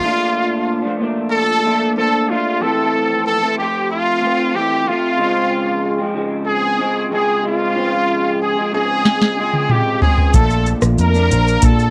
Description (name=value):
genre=indie pop, bedroom pop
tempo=93 BPM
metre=4/4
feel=straight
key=unclear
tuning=A4 = 440 Hz
part: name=bright trumpet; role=melody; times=0.0-11.9 s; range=F4 to Bb4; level=-20 LUFS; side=equal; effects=ensemble chorus, slapback echo
part: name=electric guitar through a small old amp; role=accompaniment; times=0.0-11.9 s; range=F2 to D4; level=-22 LUFS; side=equal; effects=analog chorus, warbly pitch drift
part: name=soft vintage rhythm box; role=drums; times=9.1-11.9 s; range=hi-hat, kick drum, rim click, shaker, snare drum, toms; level=-17 LUFS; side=equal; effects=overdrive
part: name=vintage muted fingered electric bass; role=bass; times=10.3-11.9 s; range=Bb1 to Bb2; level=-18 LUFS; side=equal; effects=none
room=light reverb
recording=dry, close 1970s-style studio recording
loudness=-17 LUFS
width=mono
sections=0.0-11.9 A section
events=drum fill 9.1-10.3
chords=0.0 Bbmaj7; 2.6 Fmaj7; 5.2 Dbmaj7; 10.3 Bbmaj7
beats=| 0.03 0.68 1.32 1.97 | 2.61 3.26 3.90 4.54 | 5.19 5.83 6.48 7.12 | 7.77 8.41 9.05 9.70 | 10.34 10.98 11.63